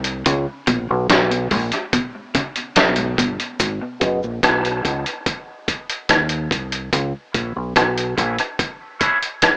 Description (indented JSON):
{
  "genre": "dub reggae",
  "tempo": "72 BPM",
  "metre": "4/4",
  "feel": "straight",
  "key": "G# minor",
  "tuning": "A4 = 440 Hz",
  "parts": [
    { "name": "deep dub fingered electric bass", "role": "bass", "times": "0.0-8.4 s", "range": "F#1 to D#2", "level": "-22 LUFS", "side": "equal", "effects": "none" },
    { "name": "dusty soul sampler-style drum kit", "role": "drums", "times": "0.0-9.6 s", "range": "hi-hat, kick drum, rim click, snare drum", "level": "-17 LUFS", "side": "equal", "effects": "overdrive, dub echo" },
    { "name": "clean electric guitar", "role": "arpeggios", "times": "0.3-3.3 s", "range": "G#2 to C#3", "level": "-26 LUFS", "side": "left 1 dB", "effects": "tremolo, dub echo" },
    { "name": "cabasa", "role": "percussion", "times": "3.6-3.8 s", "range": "none", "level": "-34 LUFS", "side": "right 1 dB", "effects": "high-pass filter on perc, dub echo" },
    { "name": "electric guitar at the edge of break-up", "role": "accompaniment", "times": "4.0-9.2 s", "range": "B3 to E5", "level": "-29 LUFS", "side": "right 1 dB", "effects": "high-pass filter, low-pass filter, dub echo" },
    { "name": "bright grand piano", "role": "stabs", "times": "4.0-9.2 s", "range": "E4 to C#5", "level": "-27 LUFS", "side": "equal", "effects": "high-pass filter, low-pass filter" }
  ],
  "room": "moderate spring reverb, RT60 2.6 s",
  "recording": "AM radio sound",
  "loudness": "-17 LUFS",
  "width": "side -27 dB against mid",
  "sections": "0.0-3.6 A section; 3.6-9.6 B section",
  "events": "break 0.0-3.6; filter sweep 0.3-9.6; part muted 3.6-9.6",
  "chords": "0.3 C#5; 3.6 G#m7; 6.9 C#m7",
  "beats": "| 0.26 1.09 1.93 2.76 | 3.59 4.42 5.26 6.09 | 6.92 7.76 8.59 9.43"
}